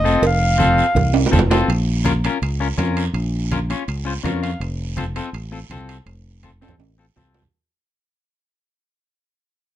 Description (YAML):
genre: latin, cumbia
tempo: 164 BPM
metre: 4/4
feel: straight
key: Bb harmonic minor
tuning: A4 = 440 Hz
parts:
  - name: warm clarinet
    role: melody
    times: 0.0-1.3 s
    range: Eb5 to F5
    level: -18 LUFS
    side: equal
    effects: none
  - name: clean electric guitar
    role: accompaniment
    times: 0.0-7.4 s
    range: C4 to F5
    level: -23 LUFS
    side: left 5 dB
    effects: none
  - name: fingered electric bass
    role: bass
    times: 0.0-7.5 s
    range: F1 to F2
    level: -21 LUFS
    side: equal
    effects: none
  - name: guiro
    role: percussion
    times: 0.1-7.5 s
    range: none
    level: -33 LUFS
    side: right 8 dB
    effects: none
  - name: congas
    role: percussion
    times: 0.2-7.5 s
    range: none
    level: -23 LUFS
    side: right 2 dB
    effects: none
  - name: cowbell and timbales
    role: percussion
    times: 0.2-7.4 s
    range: none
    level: -22 LUFS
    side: right 5 dB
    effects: none
room: moderate studio reverb, RT60 0.5 s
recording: dark, warm production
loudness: -17 LUFS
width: side -12 dB against mid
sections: 0.0-1.7 A section; 1.7-7.5 B section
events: drum fill 1.1-1.7, 6.4-7.5; fade-out 1.7-7.5; clean electric guitar fill 4.1-4.6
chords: 0.0 F; 1.7 Bbm; 4.6 F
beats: | 0.24 0.60 0.96 1.33 | 1.69 2.06 2.42 2.79 | 3.15 3.51 3.88 4.24 | 4.61 4.97 5.34 5.70 | 6.07 6.43 6.80 7.16